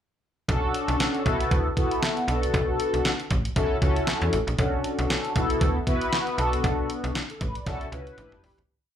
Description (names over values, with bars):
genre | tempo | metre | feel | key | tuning
early-eighties boogie funk | 117 BPM | 4/4 | swing 56% on 16ths | B minor | A4 = 440 Hz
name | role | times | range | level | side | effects
mellow synth brass | accompaniment | 0.5-8.6 s | B3 to D5 | -26 LUFS | left 1 dB | chorus, phaser, slapback echo
slap-like FM bass | bass | 0.5-8.7 s | G1 to E2 | -27 LUFS | equal | none
clean 12-bit digital drum machine | drums | 0.5-8.7 s | handclaps, hi-hat, kick drum, snare drum, toms | -28 LUFS | equal | none
room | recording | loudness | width
light reverb, digital ambience | live gig heard through the venue's PA, club reverb | -23 LUFS | side -9 dB against mid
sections
0.5-8.7 verse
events
fade-out 6.6-8.7; drum fill 7.7-8.7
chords
0.5 Bm7; 1.3 D69/B; 2.3 Bm7; 3.6 F#m7/B; 4.6 Bm7; 5.4 D69/B; 6.4 Bm7; 7.7 F#m7/B; 8.2 A7sus4